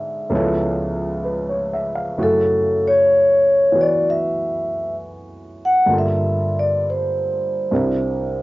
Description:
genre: jazz ballad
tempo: 65 BPM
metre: 4/4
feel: swing 68% on 8ths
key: unclear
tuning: A4 = 441 Hz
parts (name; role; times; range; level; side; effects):
- vibraphone with medium mallets; melody; 0.0-8.4 s; A4 to F#5; -17 LUFS; equal; cassette tape
- warm baby grand piano; accompaniment; 0.0-8.4 s; C2 to E#5; -22 LUFS; equal; cassette tape
room: light reverb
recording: home recording on cassette, nothing above 7.6 kHz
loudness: -16 LUFS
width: side -19 dB against mid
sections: 0.0-8.4 A section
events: none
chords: 0.3 C#7alt; 2.2 F#m7; 5.9 Gm7; 7.7 C9

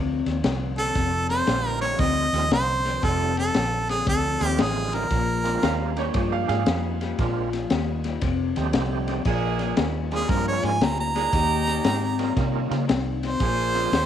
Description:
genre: electric blues shuffle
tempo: 116 BPM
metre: 4/4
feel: swing 66% on 8ths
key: Bb mixolydian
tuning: A4 = 437 Hz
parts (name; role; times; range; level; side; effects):
- electric guitar through a small old amp; riff; 0.0-14.1 s; F2 to C4; -29 LUFS; left 10 dB; ensemble chorus
- vintage muted fingered electric bass; bass; 0.0-14.1 s; F1 to Db3; -28 LUFS; right 2 dB; none
- crunchy breakbeat drum kit; drums; 0.3-14.1 s; crash cymbal, kick drum, ride cymbal, snare drum; -27 LUFS; left 2 dB; none
- clear harmonica; melody; 0.8-6.0, 10.1-14.1 s; Ab4 to Bb5; -25 LUFS; right 2 dB; none
- overdriven tonewheel organ; accompaniment; 1.5-13.9 s; G3 to G4; -32 LUFS; right 12 dB; slow rotary speaker, chorus vibrato
- bright upright piano; second line; 5.6-8.0 s; Ab4 to F5; -31 LUFS; right 11 dB; none
- clear saxophone section; stabs; 9.3-14.1 s; Bb3 to Ab4; -30 LUFS; right 10 dB; none
room: moderate plate reverb, RT60 1.3 s, small room ambience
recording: 1960s-style stereo with parts hard left and right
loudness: -21 LUFS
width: side -9 dB against mid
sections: 0.0-9.3 A section; 9.3-14.1 B section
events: harmonica solo 9.3-14.1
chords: 0.0 F7; 5.1 Bb7; 8.2 F7; 9.3 Bb7; 11.3 Eb7; 13.4 Bb7

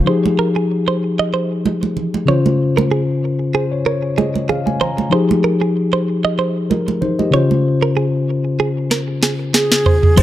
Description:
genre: afrobeats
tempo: 95 BPM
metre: 4/4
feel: swing 55% on 16ths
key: unclear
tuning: A4 = 440 Hz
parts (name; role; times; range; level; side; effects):
- mellow tine electric piano; accompaniment; 0.0-10.2 s; Db3 to Bb5; -17 LUFS; left 2 dB; none
- direct-recorded clean electric guitar; riff; 0.1-10.2 s; Ab4 to Eb5; -21 LUFS; right 6 dB; tape echo
- congas; percussion; 0.3-7.6 s; none; -20 LUFS; right 5 dB; none
- afro-pop drum kit; drums; 8.9-10.2 s; crash cymbal, kick drum, shaker, snare drum, toms; -13 LUFS; right 1 dB; none
- mellow hollow concert flute; melody; 9.5-10.2 s; Ab4 to C5; -18 LUFS; equal; none
- sub bass with octave; bass; 10.2 s; F1; -16 LUFS; equal; none
room: little or no reverb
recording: dark, warm production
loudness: -14 LUFS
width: side -13 dB against mid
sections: 0.1-10.2 A section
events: tine electric piano fill 3.2-5.1; drum fill 8.9-10.2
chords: 0.1 Fm9; 2.3 Dbmaj7; 5.1 Fm9; 7.3 Dbmaj7

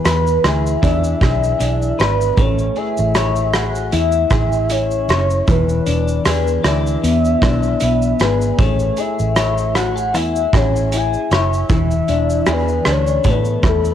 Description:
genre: indie pop, bedroom pop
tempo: 77 BPM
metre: 4/4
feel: swing 55% on 16ths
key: A major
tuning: A4 = 436 Hz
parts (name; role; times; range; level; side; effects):
- soft octave-layered synth lead; melody; 0.0-13.9 s; A4 to G#5; -20 LUFS; equal; phaser, wide subtle chorus, cassette tape, analog delay
- clean electric guitar; accompaniment; 0.0-13.9 s; E3 to C#5; -20 LUFS; left 6 dB; wide subtle chorus, vibrato effect, cassette tape
- vintage muted fingered electric bass; bass; 0.1-13.9 s; E1 to A2; -19 LUFS; right 1 dB; none
- loose indie drum kit; drums; 0.1-13.9 s; hi-hat, kick drum, rim click, shaker; -19 LUFS; right 1 dB; none
room: light reverb, small room reverb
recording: home recording on cassette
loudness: -14 LUFS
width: side -10 dB against mid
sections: 0.0-13.9 A section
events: none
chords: 0.0 E7; 2.4 Amaj7; 5.5 E7; 8.6 Amaj7; 11.7 E7; 13.2 Amaj7(no3)

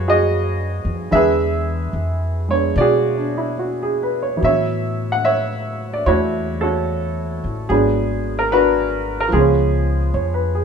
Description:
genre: jazz ballad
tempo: 73 BPM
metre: 4/4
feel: swing 67% on 8ths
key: unclear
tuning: A4 = 436 Hz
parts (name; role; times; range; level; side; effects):
- clear baby grand piano; accompaniment; 0.0-10.6 s; D3 to F#5; -18 LUFS; right 1 dB; none
- upright bass; bass; 0.0-10.6 s; G#1 to B2; -22 LUFS; left 1 dB; none
room: moderate studio reverb, RT60 0.5 s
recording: minimal, uncompressed stereo recording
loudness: -16 LUFS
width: side -6 dB against mid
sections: 0.0-10.6 A section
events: none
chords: 0.0 B69; 1.1 E9; 4.4 A6; 7.7 G#m7b5; 9.3 C#7

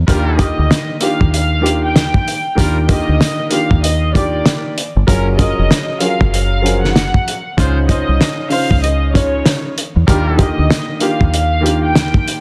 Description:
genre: hip hop, boom-bap hip-hop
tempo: 96 BPM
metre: 4/4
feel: swing 63% on 16ths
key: Eb major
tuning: A4 = 440 Hz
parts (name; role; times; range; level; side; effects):
- deep dub fingered electric bass; bass; 0.0-12.1 s; F1 to Fb2; -18 LUFS; equal; none
- dark upright piano; accompaniment; 0.1-12.4 s; Db3 to Db5; -21 LUFS; equal; high-pass filter, low-pass filter
- bright trumpet section; stabs; 0.1-10.5 s; G3 to C5; -28 LUFS; equal; high-pass filter, low-pass filter, digital delay
- cloth-damped thuddy drum kit; drums; 0.1-12.4 s; hi-hat, kick drum, snare drum; -17 LUFS; equal; none
- warm studio violin section; melody; 0.4-12.4 s; Db5 to G5; -23 LUFS; equal; high-pass filter, low-pass filter, digital delay
room: small room ambience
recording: dense, heavily limited modern master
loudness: -14 LUFS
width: mono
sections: 0.1-12.4 A section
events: none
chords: 0.1 Ebmaj9; 5.1 Gbmaj9; 7.6 Dbmaj9; 10.1 Ebmaj9

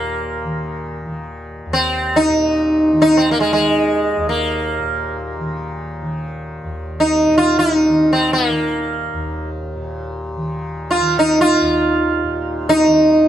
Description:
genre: indian classical, Hindustani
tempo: free time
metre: none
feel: none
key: Eb raga durga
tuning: A4 = 439 Hz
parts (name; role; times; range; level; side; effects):
- sitar; melody; 0.0-13.3 s; Ab3 to F4; -14 LUFS; equal; none
- tanpura; drone; 0.0-13.3 s; Eb2 to Eb3; -26 LUFS; left 1 dB; none
room: light reverb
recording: none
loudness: -15 LUFS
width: side -11 dB against mid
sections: 0.0-13.3 A section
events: none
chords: none

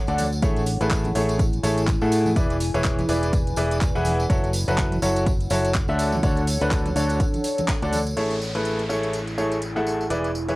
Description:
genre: piano house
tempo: 124 BPM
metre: 4/4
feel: swing 58% on 16ths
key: A major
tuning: A4 = 439 Hz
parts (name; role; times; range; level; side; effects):
- warbly tape-like pad; texture; 0.0-10.6 s; D4 to G#5; -30 LUFS; equal; chorus, built-in reverb, phaser, sidechain pumping
- bright grand piano; riff; 0.1-10.6 s; D3 to F#5; -24 LUFS; equal; sidechain pumping
- fingered electric bass; bass; 0.1-10.6 s; E1 to A2; -26 LUFS; equal; sidechain pumping, low-pass filter
- garage drum kit; drums; 0.1-10.6 s; handclaps, hi-hat, tambourine; -33 LUFS; equal; cassette tape
- tambourine and congas; percussion; 0.1-8.1 s; none; -33 LUFS; right 1 dB; none
- electronic kick drum; drums; 0.4-7.8 s; none; -23 LUFS; equal; cassette tape
- downlifter; sound effects; 8.2-10.6 s; none; -34 LUFS; equal; none
room: moderate studio ambience, RT60 0.5 s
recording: home recording on cassette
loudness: -20 LUFS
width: side -20 dB against mid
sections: 0.0-8.2 A section; 8.2-10.6 B section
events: band accent 7.7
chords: 0.4 Amaj7; 2.4 E7; 4.3 F#m7; 6.0 Dmaj7; 8.2 Amaj7

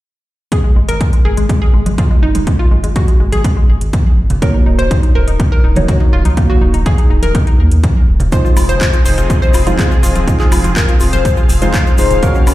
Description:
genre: progressive house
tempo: 123 BPM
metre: 4/4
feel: straight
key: unclear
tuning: A4 = 442 Hz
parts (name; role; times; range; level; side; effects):
- analog pluck; arpeggios; 0.5-12.5 s; Ab3 to C5; -20 LUFS; left 1 dB; chorus, sidechain pumping, ping-pong delay
- electronic kick drum; drums; 0.5-12.3 s; none; -12 LUFS; equal; overdrive
- house drum kit; drums; 0.5-12.5 s; handclaps, hi-hat, woodblock; -24 LUFS; equal; overdrive
- round analog bass; bass; 0.8-12.5 s; Eb1 to Eb2; -13 LUFS; equal; tube saturation, sidechain pumping
- congas; percussion; 1.9-12.2 s; none; -23 LUFS; right 2 dB; sidechain pumping on perc
- deep mellow chord stab; stabs; 4.4-12.5 s; Eb3 to F5; -19 LUFS; equal; chorus, sidechain pumping, ping-pong delay
- filtered supersaw swell; sustained chords; 8.3-12.5 s; F3 to F5; -21 LUFS; equal; sidechain pumping
- egg shaker; percussion; 8.3-12.5 s; none; -31 LUFS; left 5 dB; none
room: light reverb, digital ambience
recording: played on a big sound system in a bare room, large studio reverb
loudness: -10 LUFS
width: side -16 dB against mid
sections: 0.5-12.5 A section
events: none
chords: 0.5 N.C.; 4.4 Ebm7; 8.3 Fm7

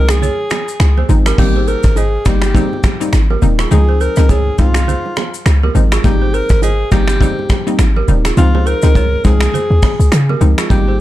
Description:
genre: afrobeats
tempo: 103 BPM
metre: 4/4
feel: swing 58% on 16ths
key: unclear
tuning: A4 = 440 Hz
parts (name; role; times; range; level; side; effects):
- breathy alto saxophone; melody; 0.0-11.0 s; F4 to Bb4; -20 LUFS; equal; digital delay
- analog pluck; accompaniment; 0.0-11.0 s; F3 to Eb4; -19 LUFS; left 2 dB; chorus
- short 808-style bass; bass; 0.0-11.0 s; Eb1 to Db3; -12 LUFS; equal; none
- soft brush drum kit; drums; 0.1-10.9 s; crash cymbal, finger snaps, hi-hat, kick drum, rim click, shaker; -17 LUFS; equal; none
- bongos and congas; percussion; 0.1-10.9 s; none; -24 LUFS; right 6 dB; none
- balafon; riff; 0.2-11.0 s; F4 to Eb5; -25 LUFS; right 5 dB; digital delay
room: small room ambience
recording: dark, warm production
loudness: -10 LUFS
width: side -14 dB against mid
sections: 0.0-1.4 A section; 1.4-11.0 B section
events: break 0.0-1.4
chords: 0.0 Dbmaj7; 1.4 Abmaj7; 3.7 Dbmaj7; 6.0 Abmaj7; 8.4 Dbmaj7

